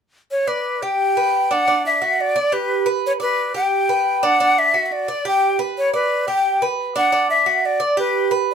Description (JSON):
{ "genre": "latin", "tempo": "176 BPM", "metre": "4/4", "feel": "straight", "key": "unclear", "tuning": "A4 = 440 Hz", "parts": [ { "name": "breathy jazz flute", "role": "melody", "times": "0.3-8.5 s", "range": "B4 to G5", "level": "-18 LUFS", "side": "left 2 dB", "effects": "none" }, { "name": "Cuban tres", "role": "arpeggios", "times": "0.5-8.5 s", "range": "D4 to D5", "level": "-21 LUFS", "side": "right 5 dB", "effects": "none" } ], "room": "moderate studio ambience, RT60 0.5 s", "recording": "minimal, uncompressed stereo recording", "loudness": "-16 LUFS", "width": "side -7 dB against mid", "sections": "0.3-8.5 A section", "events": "none", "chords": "0.3 G; 1.7 D; 2.4 G; 4.4 D; 5.1 G; 7.1 D; 7.8 G", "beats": "| 0.30 0.65 0.99 1.33 | 1.67 2.01 2.35 2.69 | 3.04 3.38 3.72 4.06 | 4.40 4.74 5.08 5.42 | 5.76 6.11 6.45 6.79 | 7.13 7.47 7.81 8.15 | 8.49" }